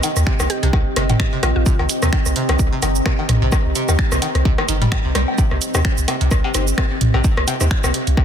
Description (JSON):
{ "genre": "minimal techno", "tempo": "129 BPM", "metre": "4/4", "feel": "swing 56% on 16ths", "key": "C minor", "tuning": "A4 = 440 Hz", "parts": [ { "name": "string-like resonator pluck", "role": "riff", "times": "0.0-8.2 s", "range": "C3 to G3", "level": "-26 LUFS", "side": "equal", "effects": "chorus, phaser, sidechain pumping, tape echo" }, { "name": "house drum kit", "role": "drums", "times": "0.0-8.2 s", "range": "finger snaps, hi-hat, shaker", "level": "-25 LUFS", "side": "right 4 dB", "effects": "soft clipping on snare" }, { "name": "booming analog drum machine", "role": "percussion", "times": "0.0-8.2 s", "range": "rim click, toms, woodblock", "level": "-22 LUFS", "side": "left 1 dB", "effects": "overdrive, tape echo" }, { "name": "deep dark ambient pad", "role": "texture", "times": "0.0-8.2 s", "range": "C4 to Bb5", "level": "-25 LUFS", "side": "right 1 dB", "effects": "chorus, built-in reverb, sidechain pumping" }, { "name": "punchy sub bass", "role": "bass", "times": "0.2-8.2 s", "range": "G1 to Eb2", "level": "-19 LUFS", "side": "equal", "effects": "sidechain pumping" }, { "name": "electronic kick drum", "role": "drums", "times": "0.3-8.2 s", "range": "none", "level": "-18 LUFS", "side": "equal", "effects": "none" }, { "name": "mallet-like synth pluck", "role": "melody", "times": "0.5-1.6 s", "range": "F4 to G4", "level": "-29 LUFS", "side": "right 2 dB", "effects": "chorus, tape echo" }, { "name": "wavetable chord stab", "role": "stabs", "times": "5.7-7.7 s", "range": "Eb4 to C5", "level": "-30 LUFS", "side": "left 4 dB", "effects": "none" } ], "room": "little or no reverb", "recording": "dense, heavily limited modern master", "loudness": "-15 LUFS", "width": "side -8 dB against mid", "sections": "0.0-8.2 A section", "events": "none", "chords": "0.0 Cm", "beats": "0.27 0.73 1.20 | 1.66 2.13 2.59 3.06 | 3.52 3.99 4.45 4.92 | 5.38 5.85 6.31 6.78 | 7.24 7.71 8.17" }